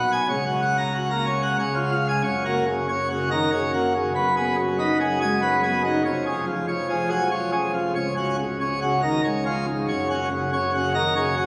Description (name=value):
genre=classical, organ toccata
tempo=94 BPM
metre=3/4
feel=straight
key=F# major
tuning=A4 = 438 Hz
part: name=pipe organ, plenum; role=solo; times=0.0-11.5 s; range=C#1 to A#5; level=-23 LUFS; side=equal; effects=none
room=wet church reverb, RT60 3.0 s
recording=recorded on a phone in the room, studio reverb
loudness=-23 LUFS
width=mono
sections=0.0-2.2 A section; 2.2-11.5 B section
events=none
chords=0.3 F#/C#; 1.6 C#; 2.2 F#; 4.2 G#m7/F#; 6.0 C#/E#; 8.0 F#/C#; 9.2 C#; 9.9 F#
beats=| 0.29 0.94 1.60 | 2.25 2.89 3.52 | 4.16 4.79 5.42 | 6.05 6.68 7.31 | 7.95 8.60 9.24 | 9.89 10.52 11.16